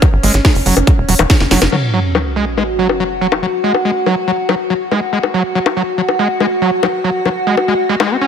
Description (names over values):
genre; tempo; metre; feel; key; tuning
psychedelic trance; 141 BPM; 4/4; straight; unclear; A4 = 440 Hz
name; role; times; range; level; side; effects
evolving wavetable pad; sustained chords; 0.0-8.3 s; C#4 to F#4; -18 LUFS; equal; chorus, built-in reverb, phaser, sidechain pumping
screaming distorted acid line; riff; 0.0-8.3 s; E3 to C#4; -17 LUFS; right 1 dB; distortion, chorus, auto-pan, sidechain pumping, ping-pong delay
electronic kick drum; drums; 0.0-1.4 s; none; -11 LUFS; equal; none
techno drum kit; drums; 0.0-8.1 s; bongos, crash cymbal, hi-hat, snare drum; -17 LUFS; left 5 dB; overdrive, low-pass filter on hats, low-pass filter on perc, low-pass filter on snare, low-pass filter on cymbals
tight sequencer bass; bass; 0.1-1.7 s; E1 to G#1; -15 LUFS; equal; none
sub drop; sound effects; 1.7-3.4 s; none; -20 LUFS; right 1 dB; none
room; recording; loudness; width
moderate lush hall reverb, RT60 1.9 s; none; -12 LUFS; side -7 dB against mid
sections
0.0-1.7 A section; 1.7-8.3 B section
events
drum fill 1.4-1.7; impact 1.7-3.4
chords
0.0 F#5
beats
| 0.02 0.45 0.87 1.30 | 1.72 2.15 2.58 3.00 | 3.43 3.85 4.28 4.70 | 5.13 5.55 5.98 6.41 | 6.83 7.26 7.68 8.11